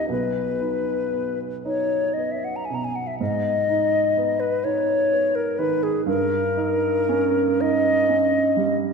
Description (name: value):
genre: classical, romantic duo for flute and grand piano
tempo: 38-44 BPM (dotted quarters)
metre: 6/8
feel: rubato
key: G# minor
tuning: A4 = 441 Hz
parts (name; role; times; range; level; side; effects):
- mellow hollow silver concert flute; melody; 0.0-8.8 s; G#4 to A#5; -22 LUFS; left 4 dB; none
- warm baby grand piano; accompaniment; 0.0-8.9 s; B1 to G4; -24 LUFS; right 7 dB; none
room: wet scoring stage reverb, RT60 1.7 s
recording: none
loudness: -20 LUFS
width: side -5 dB against mid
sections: 0.0-3.2 A section; 3.2-8.9 A section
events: none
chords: 0.1 B; 3.2 G#m; 6.1 D#7/G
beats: | 0.10 1.65 | 3.20 4.64 | 6.07 7.60